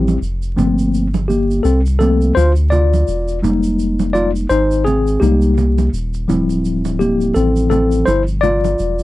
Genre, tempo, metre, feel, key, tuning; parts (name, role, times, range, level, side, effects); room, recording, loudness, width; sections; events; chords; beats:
hip hop, jazz-hop; 84 BPM; 4/4; swing 57% on 16ths; D minor; A4 = 440 Hz
mellow tine electric piano; accompaniment; 0.0-9.0 s; F3 to D5; -15 LUFS; left 2 dB; medium stereo tremolo
soft dub sub bass; bass; 0.0-9.0 s; D1 to D2; -17 LUFS; equal
congas and tube shaker; percussion; 0.1-9.0 s; -24 LUFS; right 5 dB
little or no reverb; dry, close 1970s-style studio recording, vinyl crackle; -13 LUFS; side -17 dB against mid
0.0-9.0 A section
tine electric piano solo 0.0-9.0
0.0 Dm11 (rootless); 0.6 Gm11; 3.4 Fm11; 6.3 Dm11
0.21 | 0.93 1.64 2.36 3.07 | 3.79 4.50 5.21 5.93 | 6.64 7.36 8.07 8.79